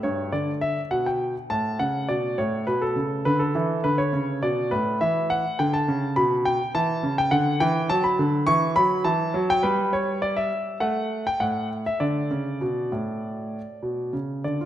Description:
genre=classical-period piano sonatina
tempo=103 BPM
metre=4/4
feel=rubato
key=D major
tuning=A4 = 439 Hz
part: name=clear concert grand piano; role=solo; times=0.0-14.7 s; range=G2 to C#6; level=-22 LUFS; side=equal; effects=none
room=wet recital hall reverb, RT60 1.9 s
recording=none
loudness=-22 LUFS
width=side -12 dB against mid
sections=0.0-14.5 A section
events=none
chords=0.3 D5; 2.7 Bm; 5.0 E5; 7.3 D; 8.5 Esus2; 9.6 N.C.; 12.0 D5

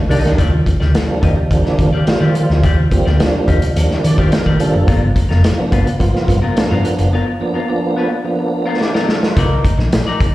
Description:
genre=funk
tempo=107 BPM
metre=4/4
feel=straight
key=unclear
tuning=A4 = 439 Hz
part: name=semi-hollow electric guitar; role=accompaniment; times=0.1-10.2 s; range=B3 to Eb5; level=-23 LUFS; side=left 4 dB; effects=slapback echo
part: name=tonewheel organ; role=stabs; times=0.1-9.5 s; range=Eb3 to D5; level=-18 LUFS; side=right 2 dB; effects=overdrive, chorus vibrato, slow rotary speaker, slapback echo
part: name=hollow-body short-scale fingered electric bass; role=bass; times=0.1-10.2 s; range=F1 to Eb3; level=-15 LUFS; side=equal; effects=none
part: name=vintage drum kit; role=drums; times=0.1-10.3 s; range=hi-hat, kick drum, snare drum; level=-16 LUFS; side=equal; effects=none
room=light reverb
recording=live gig heard through the venue's PA, recital hall reverb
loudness=-12 LUFS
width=side -16 dB against mid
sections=0.4-9.4 A section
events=tonewheel organ fill 3.8-4.9; break 7.1-9.4; drum fill 8.8-9.4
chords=0.4 Ebmaj9; 4.9 G7#9; 9.4 Cm9

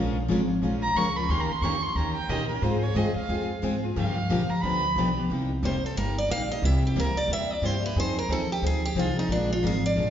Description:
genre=acoustic string swing (jazz manouche)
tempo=180 BPM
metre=4/4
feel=swing 60% on 8ths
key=C minor from 5.3 s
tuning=A4 = 445 Hz
part: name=picked steel-string acoustic guitar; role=accompaniment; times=0.0-10.1 s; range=C3 to Bb4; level=-29 LUFS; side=left 3 dB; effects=none
part: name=picked steel-string acoustic guitar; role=accompaniment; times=0.0-10.1 s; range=C3 to Bb4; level=-34 LUFS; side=right 4 dB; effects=none
part: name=upright bass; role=bass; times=0.0-10.1 s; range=F1 to Bb2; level=-28 LUFS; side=equal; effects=none
part: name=warm violin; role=second line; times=0.8-5.2 s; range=Bb4 to Db6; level=-29 LUFS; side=right 2 dB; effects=none
part: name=picked steel-string acoustic guitar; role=melody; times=5.7-10.1 s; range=D4 to F5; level=-28 LUFS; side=right 1 dB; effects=none
room=wet recital hall reverb, RT60 1.5 s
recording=recorded in a church or concert hall, nothing above 7.5 kHz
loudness=-24 LUFS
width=side -10 dB against mid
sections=0.0-5.3 A section; 5.3-10.1 A section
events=violin solo 0.0-5.3; steel-string acoustic guitar solo 5.3-10.1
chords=0.0 Bbm7; 1.3 Eb7; 2.6 Ab6; 4.0 Gm7b5; 4.6 G7; 5.3 Cm7; 6.6 C7; 8.0 Fm7; 9.3 Bb7

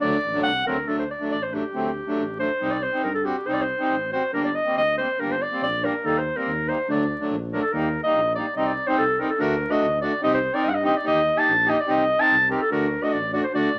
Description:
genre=klezmer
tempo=142 BPM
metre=2/4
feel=straight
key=D phrygian dominant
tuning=A4 = 441 Hz
part: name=warm clarinet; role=melody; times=0.0-13.8 s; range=G4 to A5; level=-25 LUFS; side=equal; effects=none
part: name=accordion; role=accompaniment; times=0.0-13.7 s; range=F#3 to Bb4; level=-28 LUFS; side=equal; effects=none
part: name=mellow tuba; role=bass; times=0.0-13.8 s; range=G1 to A2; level=-34 LUFS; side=equal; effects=none
room=moderate studio reverb, RT60 0.6 s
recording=vinyl crackle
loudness=-23 LUFS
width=mono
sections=0.9-7.7 A section; 7.7-13.8 B section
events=speeding up 0.0-13.8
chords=0.0 D; 2.6 Cm; 4.3 Gm; 6.0 Eb; 6.9 D; 7.7 Eb; 8.6 Cm; 9.4 D; 10.2 Cm; 11.1 Eb; 11.9 Cm; 12.7 D

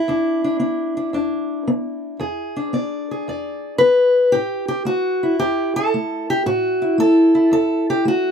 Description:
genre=acoustic country blues, solo or duo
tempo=113 BPM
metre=4/4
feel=swing 67% on 8ths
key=E mixolydian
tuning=A4 = 440 Hz
part: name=fingerpicked steel-string acoustic guitar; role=solo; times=0.0-8.3 s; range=E2 to D5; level=-17 LUFS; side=left 1 dB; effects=none
room=moderate booth ambience, RT60 0.2 s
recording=close, detailed microphones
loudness=-17 LUFS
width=side -7 dB against mid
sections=0.0-8.3 A section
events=none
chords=0.0 E7; 4.3 A5

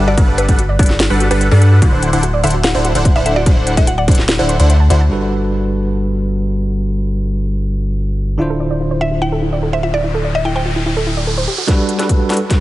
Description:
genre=future bass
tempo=146 BPM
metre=4/4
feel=half-time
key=G major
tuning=A4 = 440 Hz
part: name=mallet-like synth pluck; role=melody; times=0.0-4.0, 9.0-10.6 s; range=A4 to G5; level=-22 LUFS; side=equal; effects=chorus, sidechain pumping, tape echo
part: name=soft round pluck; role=arpeggios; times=0.0-5.1, 8.4-12.6 s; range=E4 to C6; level=-24 LUFS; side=right 2 dB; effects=chorus, sidechain pumping, tape echo
part: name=supersaw stab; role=riff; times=0.0-5.0, 11.7-12.4 s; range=D3 to F#5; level=-18 LUFS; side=equal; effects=phaser, sidechain pumping, low-pass filter, tape echo
part: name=saturated sub bass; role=bass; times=0.0-11.5 s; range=D1 to G2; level=-16 LUFS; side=equal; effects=sidechain pumping
part: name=electronic kick drum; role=drums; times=0.2-4.2, 11.7-12.6 s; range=none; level=-12 LUFS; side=equal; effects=studio reverb
part: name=trap drum kit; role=drums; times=0.2-5.0, 11.7-12.6 s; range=hi-hat, snare drum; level=-20 LUFS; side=equal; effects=high-pass filter on snare, low-pass filter on snare, studio reverb, high-pass filter on hats, low-pass filter on hats
part: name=barky tine electric piano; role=accompaniment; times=5.1-12.6 s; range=D3 to C5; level=-20 LUFS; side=right 1 dB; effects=fast stereo tremolo, sidechain pumping
part: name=riser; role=sound effects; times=9.5-12.6 s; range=none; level=-25 LUFS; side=right 1 dB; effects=none
room=light reverb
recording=heavily compressed radio sound, nothing above 11.0 kHz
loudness=-12 LUFS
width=side -16 dB against mid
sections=0.0-5.1 A section; 5.1-11.7 B section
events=drop 0.0-5.1; riser 9.5-11.7, 11.7-12.6; drum fill 11.7-12.6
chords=0.0 Gmaj7; 1.8 D7; 5.1 Gmaj7; 8.4 Dm9; 11.5 N.C.; 11.7 Gmaj7

